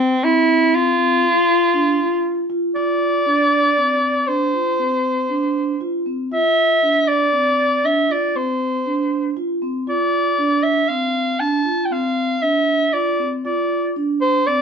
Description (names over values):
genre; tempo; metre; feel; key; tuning
progressive instrumental, progressive; 118 BPM; 7/4; straight; unclear; A4 = 435 Hz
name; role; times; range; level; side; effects
mellow soprano saxophone; melody; 0.0-14.6 s; C4 to A5; -17 LUFS; equal; none
vibraphone with soft mallets; arpeggios; 0.0-14.6 s; C4 to F4; -21 LUFS; right 1 dB; none
room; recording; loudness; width
moderate studio reverb, RT60 0.9 s; band playing live in one room; -16 LUFS; side -6 dB against mid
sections
0.0-2.8 A section; 2.8-14.6 B section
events
none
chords
0.0 F5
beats
0.23 0.73 1.24 1.75 2.25 | 2.76 3.27 3.78 4.29 4.79 5.30 5.81 | 6.32 6.83 7.34 7.85 8.36 8.86 9.37 | 9.88 10.39 10.90 11.41 11.92 12.43 12.94 | 13.45 13.96 14.47